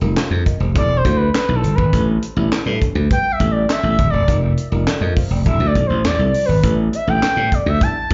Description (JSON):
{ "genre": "early-eighties boogie funk", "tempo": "102 BPM", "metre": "4/4", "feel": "straight", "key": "A minor", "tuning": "A4 = 440 Hz", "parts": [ { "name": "FM electric piano with soft pad layer", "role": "accompaniment", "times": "0.0-8.1 s", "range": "F#3 to G5", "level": "-29 LUFS", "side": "equal", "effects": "chorus, phaser, slapback echo" }, { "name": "glassy slap bass", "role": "bass", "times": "0.0-8.1 s", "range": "D#1 to A2", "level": "-20 LUFS", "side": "equal", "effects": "none" }, { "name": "tight funk drum kit", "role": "drums", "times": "0.2-8.1 s", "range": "handclaps, hi-hat, kick drum, snare drum", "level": "-22 LUFS", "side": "equal", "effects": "none" }, { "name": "expressive portamento lead", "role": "melody", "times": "0.8-8.1 s", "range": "A4 to A5", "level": "-23 LUFS", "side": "equal", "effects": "chorus, slapback echo, analog delay" } ], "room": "little or no reverb", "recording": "live gig heard through the venue's PA, club reverb, nothing above 7.6 kHz", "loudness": "-17 LUFS", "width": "mono", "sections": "0.0-8.1 A section", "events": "analog synth lead solo 0.0-8.1", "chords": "0.0 F9sus4; 0.8 E9sus4; 1.9 A9sus4; 4.3 F9sus4; 5.5 E9sus4; 6.6 A9sus4" }